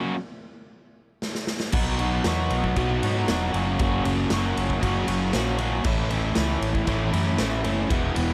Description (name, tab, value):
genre	garage rock duo or trio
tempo	117 BPM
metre	4/4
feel	straight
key	unclear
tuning	A4 = 439 Hz
part	crunchy overdriven guitar	riff	0.0-8.3 s	F#2 to F#4	-27 LUFS	equal	none
part	raw garage drum kit	drums	1.2-8.3 s	crash cymbal, kick drum, ride cymbal, snare drum	-31 LUFS	equal	none
part	hollow-body short-scale fingered electric bass	bass	1.7-8.3 s	E1 to G#2	-30 LUFS	equal	tube saturation
room	light reverb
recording	none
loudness	-24 LUFS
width	mono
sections	0.0-1.7 A section; 1.7-8.3 B section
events	break 0.0-1.7; drum fill 1.2-1.7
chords	0.0 F#; 1.7 B; 3.5 F#; 5.8 A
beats	0.19 0.70 1.22 | 1.74 2.25 2.76 3.28 | 3.79 4.30 4.82 5.33 | 5.84 6.36 6.87 7.39 | 7.90